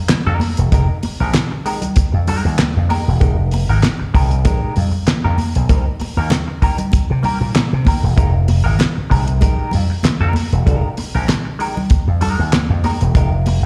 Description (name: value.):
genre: funk.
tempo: 96 BPM.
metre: 4/4.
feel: straight.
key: F minor.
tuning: A4 = 437 Hz.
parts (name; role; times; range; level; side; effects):
clean electric guitar; accompaniment; 0.1-13.5 s; Ab3 to Bb4; -27 LUFS; equal; wah, slapback echo.
cloth-damped thuddy drum kit; drums; 0.1-13.6 s; handclaps, hi-hat, kick drum, snare drum; -20 LUFS; equal; none.
congas; percussion; 0.1-13.6 s; none; -26 LUFS; equal; slapback echo.
slap bass with an envelope filter; bass; 0.3-13.7 s; E1 to C3; -18 LUFS; equal; none.
room: light reverb, studio ambience.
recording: live gig heard through the venue's PA, recital hall reverb.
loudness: -16 LUFS.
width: mono.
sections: 0.0-13.7 A section.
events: none.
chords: 0.0 Fm11; 5.7 Cm7; 8.2 Fm11.